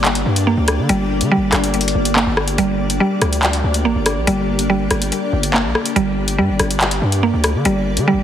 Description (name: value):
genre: hip hop, drill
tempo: 142 BPM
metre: 4/4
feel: half-time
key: G minor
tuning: A4 = 436 Hz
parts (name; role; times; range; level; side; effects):
- granular cloud pad; sustained chords; 0.0-8.2 s; Bb3 to D5; -22 LUFS; left 2 dB; built-in reverb
- mallet-like synth pluck; arpeggios; 0.0-8.2 s; G3 to Bb3; -19 LUFS; right 2 dB; chorus, ping-pong delay
- distorted 808-style bass; bass; 0.0-8.2 s; G1 to D3; -20 LUFS; equal; distortion
- drill drum kit; drums; 0.0-8.1 s; handclaps, hi-hat, rim click; -19 LUFS; left 1 dB; none
room: light reverb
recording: heavily compressed radio sound, multiband compression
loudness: -14 LUFS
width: side -10 dB against mid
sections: 0.0-8.2 A section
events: none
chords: 0.0 Gm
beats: 0.05 0.47 | 0.89 1.31 1.74 2.16 | 2.58 3.00 3.43 3.85 | 4.27 4.70 5.12 5.54 | 5.96 6.38 6.81 7.23 | 7.65 8.07